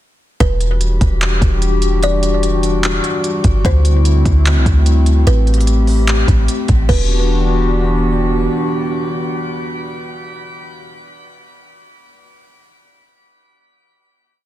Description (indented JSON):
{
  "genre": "hip hop, atmospheric cloud-rap",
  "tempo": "148 BPM",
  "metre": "4/4",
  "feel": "half-time",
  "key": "E minor",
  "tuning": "A4 = 436 Hz",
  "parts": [
    { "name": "kalimba", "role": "melody", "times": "0.4-8.1 s", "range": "B4 to D5", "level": "-25 LUFS", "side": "right 2 dB", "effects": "tape echo" },
    { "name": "dark analog pad", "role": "sustained chords", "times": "0.4-10.9 s", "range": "D3 to G4", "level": "-19 LUFS", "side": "left 2 dB", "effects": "wide subtle chorus, sidechain pumping" },
    { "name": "clean 808-style bass", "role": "bass", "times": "0.4-8.5 s", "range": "E1 to D2", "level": "-14 LUFS", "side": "equal", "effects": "none" },
    { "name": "smooth R&B drum kit", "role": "drums", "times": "0.4-7.0 s", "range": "crash cymbal, handclaps, hi-hat, kick drum", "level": "-20 LUFS", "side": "equal", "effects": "vintage 12-bit sampler grit" }
  ],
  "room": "digital ambience",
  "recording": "dense, heavily limited modern master",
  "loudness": "-12 LUFS",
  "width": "side -14 dB against mid",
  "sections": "0.4-6.9 verse; 6.9-10.1 final chord",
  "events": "none",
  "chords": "0.4 Em9; 3.6 D9; 5.3 Am9; 6.9 Em9"
}